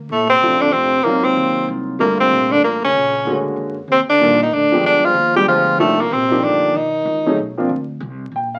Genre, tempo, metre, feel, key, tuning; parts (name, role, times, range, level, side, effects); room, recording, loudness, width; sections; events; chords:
jazz, small-group swing and bop; 190 BPM; 3/4; swing 62% on 8ths; Bb major; A4 = 440 Hz
upright bass; bass; 0.0-8.6 s; G1 to Bb2; -31 LUFS; equal
edgy tenor saxophone; melody; 0.1-7.4 s; A3 to G4; -17 LUFS; equal
breathy trombone; second line; 0.1-7.4 s; A2 to G3; -26 LUFS; equal
warm grand piano; accompaniment; 0.4-8.6 s; D3 to G5; -22 LUFS; equal
wet studio reverb, RT60 0.5 s; very old 78 rpm record, vinyl crackle; -16 LUFS; mono
0.1-7.7 A section
0.1 Bbmaj9; 1.0 Ab13; 2.0 Gm7; 2.9 Bb7alt; 3.9 Ebmaj7; 4.8 G7b9; 5.8 Cm11; 6.7 Badd9; 7.7 Bb